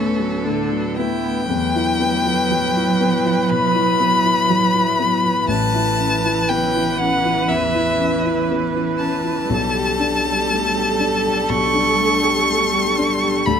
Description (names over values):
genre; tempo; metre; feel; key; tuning
neoclassical piano and strings; 60 BPM; 4/4; rubato; E dorian; A4 = 440 Hz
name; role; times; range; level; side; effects
clear violin; melody; 0.0-13.6 s; A4 to C#6; -20 LUFS; left 3 dB; none
warm cello; second line; 0.0-13.6 s; E3 to E4; -26 LUFS; right 7 dB; none
dark grand piano; accompaniment; 0.0-13.6 s; A1 to F#5; -21 LUFS; left 3 dB; none
warm viola; accompaniment; 0.0-13.6 s; D3 to B4; -25 LUFS; right 5 dB; none
shimmering ambient pad; sustained chords; 0.0-13.6 s; D3 to B4; -28 LUFS; right 1 dB; chorus, built-in reverb
room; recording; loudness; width
light reverb; close, detailed microphones; -16 LUFS; side -7 dB against mid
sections
0.0-1.5 A section; 1.5-13.6 B section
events
none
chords
0.0 D6; 1.5 Emadd9; 5.5 Aadd9; 9.5 Gadd9/B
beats
0.45 | 1.49 2.51 3.51 4.50 | 5.49 6.49 7.49 8.49 | 9.49 10.49 11.49 12.48 | 13.46